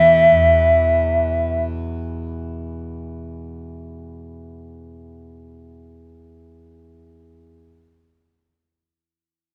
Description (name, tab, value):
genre	indian classical, Hindustani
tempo	free time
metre	none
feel	none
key	unclear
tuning	A4 = 441 Hz
part	mellow bansuri	melody	0.0-1.6 s	E5	-16 LUFS	equal	none
part	tanpura	drone	0.0-7.5 s	E2 to E3	-28 LUFS	equal	none
room	moderate studio reverb, RT60 0.5 s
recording	dark, warm production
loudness	-18 LUFS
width	mono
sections	none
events	none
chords	none